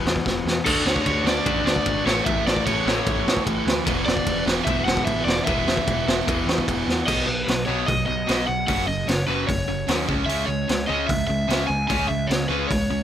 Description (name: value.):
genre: punk rock.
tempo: 149 BPM.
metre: 4/4.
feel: straight.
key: unclear.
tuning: A4 = 442 Hz.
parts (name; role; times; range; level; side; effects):
overdriven semi-hollow guitar; melody; 0.0-13.0 s; A4 to G#5; -26 LUFS; left 1 dB; none.
overdriven electric guitar; riff; 0.0-13.0 s; E2 to D4; -28 LUFS; left 13 dB; none.
fuzz picked electric bass; bass; 0.1-13.0 s; E1 to A2; -29 LUFS; equal; overdrive.
raw garage drum kit; drums; 0.1-12.8 s; crash cymbal, hi-hat, kick drum, ride cymbal, snare drum; -24 LUFS; equal; none.
distorted electric guitar; riff; 0.7-13.0 s; E2 to D4; -28 LUFS; right 13 dB; distortion.
room: little or no reverb.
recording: none.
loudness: -20 LUFS.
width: side -10 dB against mid.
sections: 0.0-7.1 A section; 7.1-13.0 B section.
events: drum fill 0.3-0.7, 6.9; half time 7.1-13.0.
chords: 0.0 E5; 0.7 D5; 2.1 A; 3.9 E5; 7.1 B; 8.7 F#5; 10.1 C#m.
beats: 0.26 | 0.66 1.06 1.46 1.86 | 2.26 2.66 3.06 3.46 | 3.86 4.26 4.67 5.07 | 5.47 5.87 6.27 6.67 | 7.07 7.47 7.88 8.28 | 8.68 9.09 9.49 9.89 | 10.29 10.69 11.10 11.50 | 11.90 12.30 12.70.